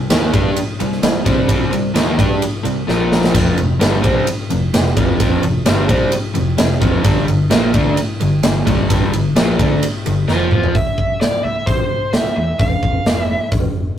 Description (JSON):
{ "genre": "hard rock", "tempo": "130 BPM", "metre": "4/4", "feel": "straight", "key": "unclear", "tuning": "A4 = 440 Hz", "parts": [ { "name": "crunchy overdriven guitar", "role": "riff", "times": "0.0-10.7 s", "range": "F2 to G4", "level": "-17 LUFS", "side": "equal", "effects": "none" }, { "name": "vintage muted fingered electric bass", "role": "bass", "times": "0.0-13.9 s", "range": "F1 to G2", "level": "-22 LUFS", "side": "equal", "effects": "none" }, { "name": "big rock drum kit", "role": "drums", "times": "0.1-13.6 s", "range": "hi-hat, kick drum, ride cymbal, snare drum, splash cymbal, toms", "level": "-16 LUFS", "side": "equal", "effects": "none" }, { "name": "bluesy overdriven lead guitar", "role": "melody", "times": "10.8-13.5 s", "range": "C5 to F5", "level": "-20 LUFS", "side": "equal", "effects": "distortion" } ], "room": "moderate booth ambience, RT60 0.2 s", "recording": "rough rehearsal-room recording, tube saturation", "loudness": "-13 LUFS", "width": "side -10 dB against mid", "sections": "0.0-10.7 A section; 10.7-14.0 B section", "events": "drum fill 2.9-3.3, 10.3-10.7", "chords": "0.0 C5; 2.9 Bb5; 3.3 F5; 7.0 G5; 10.3 F5; 10.7 C; 12.6 N.C." }